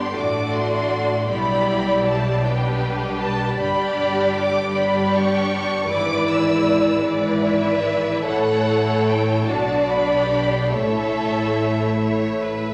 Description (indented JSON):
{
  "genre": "classical, slow romantic movement for string orchestra",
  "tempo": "46-53 BPM (dotted quarters)",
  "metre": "6/8",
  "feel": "rubato",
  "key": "unclear",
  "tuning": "A4 = 439 Hz",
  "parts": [
    { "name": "warm studio violin section", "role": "melody", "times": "0.0-12.7 s", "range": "D5 to E6", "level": "-30 LUFS", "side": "equal", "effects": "none" },
    { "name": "rich studio violin section", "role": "second line", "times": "0.0-12.7 s", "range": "F#4 to D5", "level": "-24 LUFS", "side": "equal", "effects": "none" },
    { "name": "warm studio viola section", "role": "accompaniment", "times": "0.0-12.7 s", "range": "E3 to E4", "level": "-26 LUFS", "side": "equal", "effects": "none" },
    { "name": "bright studio cello section", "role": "bass", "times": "0.0-12.7 s", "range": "G2 to B2", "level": "-29 LUFS", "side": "equal", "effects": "none" },
    { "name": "rich studio double bass section", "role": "bass", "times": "0.0-12.7 s", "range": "G1 to B1", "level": "-32 LUFS", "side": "equal", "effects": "none" }
  ],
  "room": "wet recital hall reverb, RT60 1.6 s",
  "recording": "none",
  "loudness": "-20 LUFS",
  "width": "mono",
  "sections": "0.0-12.7 A section",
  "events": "none",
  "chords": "0.2 D7/A; 1.3 G/B; 3.6 G; 5.9 E7/G#; 8.3 A; 9.5 Bm; 10.7 A",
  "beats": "0.17 | 1.31 2.45 | 3.60 4.75 | 5.91 7.06 | 8.25 9.48 | 10.73 12.01"
}